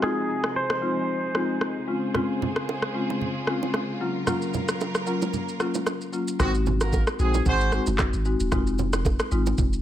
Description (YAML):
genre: afrobeats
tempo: 113 BPM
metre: 4/4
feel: swing 55% on 16ths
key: unclear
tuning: A4 = 442 Hz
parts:
  - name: direct-recorded clean electric guitar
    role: melody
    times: 0.0-1.8 s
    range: Ab4 to C5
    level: -29 LUFS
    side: equal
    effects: low-pass filter, tape echo
  - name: marimba with medium mallets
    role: accompaniment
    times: 0.0-9.5 s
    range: Gb3 to Gb4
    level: -28 LUFS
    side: left 3 dB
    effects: low-pass filter
  - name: clear studio string section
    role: sustained chords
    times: 0.0-6.4 s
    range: C3 to C5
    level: -32 LUFS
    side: right 2 dB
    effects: low-pass filter
  - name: afro-pop drum kit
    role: drums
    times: 0.0-9.8 s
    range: handclaps, kick drum, rim click, shaker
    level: -27 LUFS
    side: equal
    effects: none
  - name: congas and bongos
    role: percussion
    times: 2.1-9.7 s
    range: none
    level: -31 LUFS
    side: right 6 dB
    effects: none
  - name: clear horn section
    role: second line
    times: 6.4-7.8 s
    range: Eb3 to C5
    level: -28 LUFS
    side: right 3 dB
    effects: none
  - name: punchy sub bass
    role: bass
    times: 6.4-9.8 s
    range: Eb1 to Bb1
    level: -25 LUFS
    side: equal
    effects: none
room: light reverb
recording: none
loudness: -23 LUFS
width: side -11 dB against mid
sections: 0.0-6.4 A section; 6.4-9.8 B section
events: none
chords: 0.0 Fm7; 1.9 Dbmaj7; 4.0 Gbmaj7; 6.4 Ab7; 8.5 Fm7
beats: | 0.02 0.56 1.09 1.62 | 2.15 2.68 3.21 3.74 | 4.27 4.80 5.33 5.87 | 6.40 6.93 7.46 7.99 | 8.52 9.05 9.58